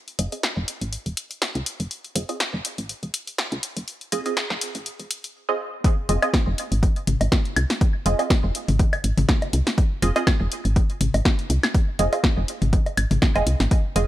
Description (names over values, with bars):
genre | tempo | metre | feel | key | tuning
minimal techno | 122 BPM | 4/4 | swing 55% on 16ths | F minor | A4 = 440 Hz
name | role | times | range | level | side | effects
punchy analog drum machine | drums | 0.1-14.1 s | hi-hat, snare drum | -26 LUFS | equal | overdrive, high-pass filter on hats, high-pass filter on snare
filtered dub chord stab | stabs | 0.2-14.0 s | C4 to Eb5 | -27 LUFS | right 3 dB | phaser, analog chorus, tape echo
woody FM bass | bass | 0.2-14.0 s | Eb1 to C2 | -22 LUFS | equal | sidechain pumping
electronic kick drum | drums | 5.8-13.8 s | none | -20 LUFS | equal | overdrive
electronic woodblock and toms | percussion | 6.2-13.4 s | none | -27 LUFS | left 2 dB | tape echo
room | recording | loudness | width
digital ambience | high-pass filter | -20 LUFS | side -14 dB against mid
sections
0.0-5.8 A section; 5.8-14.1 B section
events
build-up 0.0-5.8; filter sweep on synth stab 0.0-5.8; drop 5.8-14.1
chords
0.0 Fm7